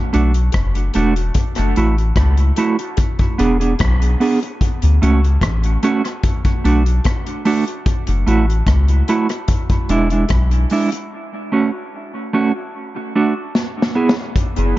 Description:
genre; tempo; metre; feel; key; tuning
dub reggae; 74 BPM; 4/4; straight; unclear; A4 = 440 Hz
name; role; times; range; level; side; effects
mellow electric guitar; accompaniment; 0.1-14.1 s; G#3 to G#4; -19 LUFS; right 3 dB; tremolo, dub echo
soft dub sub bass; bass; 0.1-14.7 s; E1 to D2; -15 LUFS; left 1 dB; none
vintage drum kit; drums; 0.1-14.7 s; hi-hat, kick drum, rim click, snare drum; -19 LUFS; left 1 dB; none
room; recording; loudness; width
light reverb, studio reverb; echo-heavy mix, nothing above 7.5 kHz; -14 LUFS; side -16 dB against mid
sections
0.0-14.4 A section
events
break 11.1-14.4; drum fill 13.5-14.4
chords
0.0 Bm7; 1.4 F#m7; 3.0 E7; 4.6 Dmaj7 (rootless); 6.2 Bm7; 7.9 F#m7; 9.5 E7; 11.1 A6; 12.7 D; 13.5 E/B

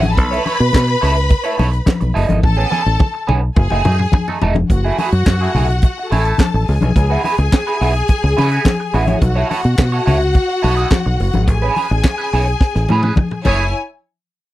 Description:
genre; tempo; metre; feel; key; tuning
disco; 106 BPM; 4/4; straight; F# dorian; A4 = 440 Hz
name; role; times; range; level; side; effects
clear symphonic string section; second line; 0.0-13.7 s; E4 to B5; -20 LUFS; left 2 dB; none
electric guitar at the edge of break-up; accompaniment; 0.0-13.6 s; A3 to D#5; -20 LUFS; right 4 dB; wah, lush chorus
fingered electric bass; bass; 0.0-13.7 s; E1 to C#3; -16 LUFS; equal; none
tight funk drum kit; drums; 0.0-13.6 s; crash cymbal, handclaps, hi-hat, kick drum, snare drum, toms; -15 LUFS; equal; none
congas; percussion; 0.0-13.7 s; none; -22 LUFS; left 4 dB; none
room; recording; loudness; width
little or no reverb; dry, close 1970s-style studio recording; -13 LUFS; side -15 dB against mid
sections
0.0-4.7 A section; 4.7-13.7 B section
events
drum fill 2.4-4.7, 12.6-13.7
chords
0.2 B9sus4; 2.4 Amaj9; 3.6 F#m69; 4.7 F#m9; 6.7 C#m7; 9.2 B9sus4; 11.5 Amaj9; 13.5 F#m9; 13.7 N.C.

